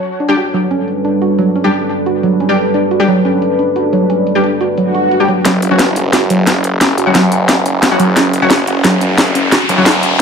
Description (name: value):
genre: dark technical drum and bass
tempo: 177 BPM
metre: 4/4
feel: straight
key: F# phrygian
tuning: A4 = 441 Hz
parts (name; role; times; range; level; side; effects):
- deep dark ambient pad; sustained chords; 0.0-10.2 s; G3 to B4; -18 LUFS; equal; chorus, built-in reverb
- drum and bass drum kit; drums; 0.0-10.1 s; hi-hat, snare drum; -13 LUFS; left 1 dB; overdrive, low-pass filter on hats, low-pass filter on cymbals, low-pass filter on snare, low-pass filter on room
- soft round pluck; arpeggios; 0.2-10.0 s; F#3 to F#4; -16 LUFS; right 2 dB; chorus, dub echo
- orchestra-hit-like synth stab; stabs; 0.3-9.9 s; F#3 to G4; -16 LUFS; left 2 dB; built-in reverb, dub echo
- swell and riser; sound effects; 4.9-10.2 s; none; -19 LUFS; equal; none
- snarling distorted saw bass; bass; 5.5-10.2 s; E1 to F#1; -16 LUFS; left 1 dB; distortion, overdrive, high-pass filter
room: moderate digital room reverb, RT60 1.0 s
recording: none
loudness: -10 LUFS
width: side -6 dB against mid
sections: 0.0-5.5 A section; 5.5-10.2 B section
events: swell 4.9-5.5; build-up 5.5-10.2; drum fill 5.5-10.2; riser 5.5-10.2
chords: 0.0 G; 5.5 F#m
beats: | 0.03 0.37 0.71 1.05 | 1.39 1.73 2.06 2.40 | 2.74 3.08 3.42 3.76 | 4.10 4.44 4.78 5.12 | 5.45 5.79 6.13 6.47 | 6.81 7.15 7.49 7.83 | 8.17 8.51 8.84 9.18 | 9.52 9.86 10.20